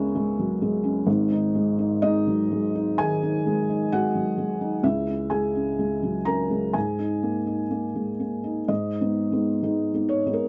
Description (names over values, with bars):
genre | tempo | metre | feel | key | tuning
neoclassical minimalist piano | 63 BPM | 4/4 | rubato | G# minor | A4 = 442 Hz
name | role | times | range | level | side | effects
felt-muted upright piano | solo | 0.0-10.5 s | G#1 to C#6 | -24 LUFS | equal | none
room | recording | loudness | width
moderate studio ambience, RT60 0.5 s | dark, warm production, nothing above 7.5 kHz | -25 LUFS | mono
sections
0.0-8.7 A section; 8.7-10.5 B section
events
none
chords
0.0 C#m; 1.1 G#5; 4.8 C#m; 6.7 G#sus2; 8.7 G#m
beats
0.14 | 1.07 2.02 2.99 3.92 | 4.83 5.78 6.75 7.71 | 8.70 9.64